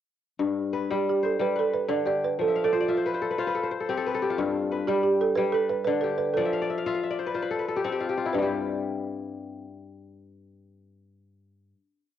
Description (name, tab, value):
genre	west african traditional, West African string and xylophone music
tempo	121 BPM (dotted quarters)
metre	12/8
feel	straight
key	G mixolydian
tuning	A4 = 442 Hz
part	kora	arpeggios	0.4-11.8 s	G2 to F5	-27 LUFS	left 4 dB	cassette tape
part	balafon	melody	0.9-11.7 s	F4 to D5	-25 LUFS	right 5 dB	cassette tape
room	wet spring reverb, RT60 1.3 s, studio ambience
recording	home recording on cassette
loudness	-24 LUFS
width	side -10 dB against mid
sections	0.4-8.3 A section; 8.3-12.2 final chord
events	kora fill 2.5-4.4, 6.4-8.3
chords	0.4 G; 2.4 F5; 4.4 G; 6.4 F; 8.3 N.C.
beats	| 0.40 0.90 1.40 1.90 | 2.40 2.89 3.39 3.88 | 4.38 4.88 5.37 5.86 | 6.36 6.85 7.35 7.84 | 8.34 8.83 9.32 9.82 | 10.31 10.81 11.31